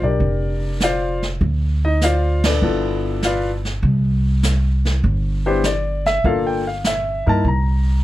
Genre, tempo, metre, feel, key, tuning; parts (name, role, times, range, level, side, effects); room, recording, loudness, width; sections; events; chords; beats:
jazz piano trio; 99 BPM; 4/4; swing 69% on 8ths; C major; A4 = 443 Hz
warm grand piano; melody; 0.0-8.0 s; Bb3 to Bb5; -20 LUFS; left 2 dB
upright bass; bass; 0.0-8.0 s; F1 to G2; -19 LUFS; equal
jazz brush drum kit; drums; 0.2-8.0 s; brushed snare drum, hi-hat, kick drum, ride cymbal, snare drum; -25 LUFS; right 2 dB
little or no reverb; -17 LUFS; side -15 dB against mid
0.0-8.0 A section
band accent 2.3-2.6
0.0 Bb69; 1.4 Dm7; 2.6 G13; 3.8 Csus2; 6.2 Gm7; 7.4 Bbsus2/C
0.20 0.81 | 1.41 2.01 2.62 3.22 | 3.83 4.43 5.03 5.63 | 6.24 6.84 7.45